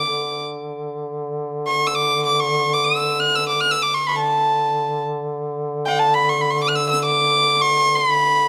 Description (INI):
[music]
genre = Arabic maqam ensemble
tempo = free time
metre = none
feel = none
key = D maqam rast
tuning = A4 = 440 Hz
[part]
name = warm violin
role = melody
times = 0.0-8.5 s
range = F#5-48c to F#6-48c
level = -19 LUFS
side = equal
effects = none
[part]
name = mellow duduk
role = drone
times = 0.0-8.5 s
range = D3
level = -27 LUFS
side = equal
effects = none
[sound]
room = moderate recital hall reverb, RT60 1.8 s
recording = none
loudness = -19 LUFS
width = mono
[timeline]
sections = 0.0-8.5 A section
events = none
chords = none